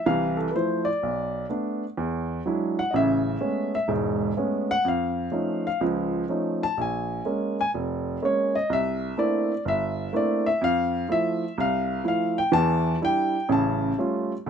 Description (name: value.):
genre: solo jazz.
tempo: 125 BPM.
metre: 4/4.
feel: swing 67% on 8ths.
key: unclear.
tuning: A4 = 439 Hz.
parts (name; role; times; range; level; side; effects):
warm upright piano; solo; 0.0-14.5 s; E1 to A5; -23 LUFS; equal; none.
room: light reverb.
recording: minimal, uncompressed stereo recording.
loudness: -23 LUFS.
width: side -7 dB against mid.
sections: 0.0-14.5 A section.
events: upright piano solo 0.0-14.5.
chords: 0.0 Fmaj7; 1.0 Bm7; 2.0 E9; 2.9 Amaj9; 4.8 Faug7; 6.8 Bbm7; 8.7 C13; 10.6 Fmaj7; 12.5 Emadd11; 13.5 Aaug7.